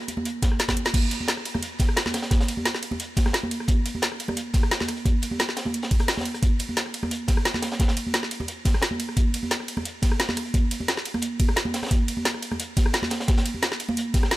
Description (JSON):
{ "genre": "drum and bass", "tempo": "175 BPM", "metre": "4/4", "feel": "straight", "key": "none", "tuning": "none", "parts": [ { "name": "crunchy breakbeat drum kit", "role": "drums", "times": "0.0-14.4 s", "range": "hi-hat, snare drum", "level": "-34 LUFS", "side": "equal", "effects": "high-pass filter on hats, high-pass filter on snare, high-pass filter on room" }, { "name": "garage drum kit", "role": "drums", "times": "0.1-14.4 s", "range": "crash cymbal, hi-hat, ride cymbal, rim click, snare drum", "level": "-27 LUFS", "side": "equal", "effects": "none" }, { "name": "congas", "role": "percussion", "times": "0.1-14.3 s", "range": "none", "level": "-30 LUFS", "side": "right 2 dB", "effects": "none" }, { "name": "electronic kick drum", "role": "drums", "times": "0.4-14.2 s", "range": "none", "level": "-22 LUFS", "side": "equal", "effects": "none" } ], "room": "small room ambience", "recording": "none", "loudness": "-22 LUFS", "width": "side -17 dB against mid", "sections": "0.9-14.4 A section", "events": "drum fill 0.7; band accent 0.9; drop 0.9-14.4", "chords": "none" }